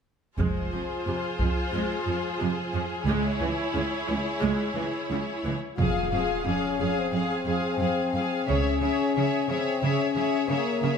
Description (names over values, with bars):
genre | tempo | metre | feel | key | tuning
cinematic, epic orchestral film score | 89 BPM | 4/4 | straight | F harmonic minor | A4 = 443 Hz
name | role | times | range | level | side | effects
warm symphonic violin section | second line | 0.4-11.0 s | Ab4 to Db5 | -33 LUFS | left 4 dB | none
warm symphonic viola section | accompaniment | 0.4-11.0 s | C3 to Ab4 | -31 LUFS | right 1 dB | none
rich symphonic cello section | bass | 0.4-10.9 s | Db2 to Db3 | -30 LUFS | right 4 dB | none
warm symphonic double bass section | bass | 0.4-8.8 s | F1 to Db2 | -30 LUFS | right 4 dB | none
taiko ensemble | drums | 0.4-1.7 s | none | -30 LUFS | equal | none
warm studio violin section | melody | 5.8-11.0 s | Fb5 to F5 | -33 LUFS | left 6 dB | none
warm French horn section | sustained chords | 5.8-11.0 s | Bb3 to F4 | -27 LUFS | left 6 dB | none
impact | sound effects | 5.8-8.5 s | none | -36 LUFS | equal | none
room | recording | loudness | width
moderate scoring stage reverb, RT60 1.6 s | none | -24 LUFS | side -6 dB against mid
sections
0.4-5.8 A section; 5.8-11.0 B section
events
impact 5.8-8.5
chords
0.4 Fm; 3.1 Dbm; 5.8 Fm; 8.5 Dbm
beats
| 0.39 1.06 1.73 2.40 | 3.07 3.74 4.42 5.10 | 5.79 6.47 7.14 7.81 | 8.49 9.16 9.83 10.50